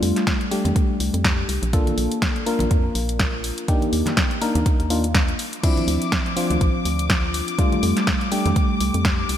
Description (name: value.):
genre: deep house.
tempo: 123 BPM.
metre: 4/4.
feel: swing 57% on 16ths.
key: unclear.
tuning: A4 = 439 Hz.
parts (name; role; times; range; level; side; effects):
mellow FM electric piano; stabs; 0.0-9.4 s; F3 to Bb4; -23 LUFS; left 1 dB; chorus, cassette tape, sidechain pumping, ping-pong delay.
organ-like FM bass; bass; 0.0-9.4 s; A1 to F2; -24 LUFS; equal; sidechain pumping.
deep house drum kit; drums; 0.0-9.4 s; crash cymbal, hi-hat, snare drum; -25 LUFS; equal; none.
electronic kick drum; drums; 0.3-9.2 s; none; -21 LUFS; equal; none.
congas; percussion; 0.6-8.5 s; none; -33 LUFS; right 2 dB; none.
rich chamber violin section; texture; 5.6-9.4 s; D6; -29 LUFS; left 5 dB; sidechain pumping.
room: moderate lush hall reverb, RT60 2.1 s.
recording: bright 1980s-style digital production.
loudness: -18 LUFS.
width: side -10 dB against mid.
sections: 0.0-9.4 A section.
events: none.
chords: 0.0 F69; 1.7 Bbmaj7; 3.7 Ebmaj7; 5.6 Dm9; 7.6 F69.